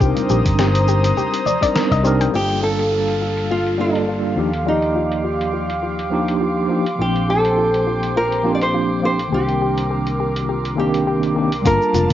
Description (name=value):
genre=sunset chillout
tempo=103 BPM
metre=4/4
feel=swing 56% on 16ths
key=unclear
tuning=A4 = 440 Hz
part: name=tine electric piano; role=accompaniment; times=0.0-12.1 s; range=Eb3 to A5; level=-21 LUFS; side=equal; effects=medium stereo tremolo, auto-pan, low-pass filter, tape echo
part: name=airy breathy pad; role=sustained chords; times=0.0-12.1 s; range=G4 to Eb6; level=-25 LUFS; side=equal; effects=chorus
part: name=soft round pluck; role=arpeggios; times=0.0-12.1 s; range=F4 to G5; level=-26 LUFS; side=left 8 dB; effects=chorus, cassette tape, tape echo
part: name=fretless electric bass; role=bass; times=0.0-12.1 s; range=F1 to Eb2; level=-23 LUFS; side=equal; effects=none
part: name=dusty soul sampler-style drum kit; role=drums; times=0.0-12.1 s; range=hi-hat, shaker, snare drum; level=-27 LUFS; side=equal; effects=low-pass filter on perc, low-pass filter on hats, low-pass filter on snare, low-pass filter on room
part: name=electronic kick drum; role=drums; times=0.0-2.0, 11.7-12.1 s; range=none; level=-20 LUFS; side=equal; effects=none
part: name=congas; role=percussion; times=0.2-2.3, 11.9-12.1 s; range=none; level=-30 LUFS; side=right 8 dB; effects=none
part: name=downlifter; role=sound effects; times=2.3-7.0 s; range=none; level=-35 LUFS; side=right 3 dB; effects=none
part: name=wind-like tuned noise texture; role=texture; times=3.5-11.7 s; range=C6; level=-36 LUFS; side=right 3 dB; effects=built-in reverb
part: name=nylon-string guitar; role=melody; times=2.4-12.1 s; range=D4 to D5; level=-21 LUFS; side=equal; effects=cassette tape, tape echo
room=moderate spring reverb, RT60 1.6 s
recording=home recording on cassette, nothing above 7.5 kHz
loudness=-16 LUFS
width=side -12 dB against mid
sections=0.0-2.3 A section; 2.3-11.7 B section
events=filter sweep on tine electric piano 0.0-2.3, 2.3-11.7; band accent 1.8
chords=0.0 Cm9; 2.3 Gm9; 4.4 Ebmaj9; 7.0 Bb69; 9.3 Cm9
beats=| 0.01 0.59 1.17 1.75 | 2.33 2.92 3.50 4.08 | 4.67 5.25 5.83 6.41 | 7.00 7.58 8.16 8.74 | 9.32 9.91 10.49 11.07 | 11.65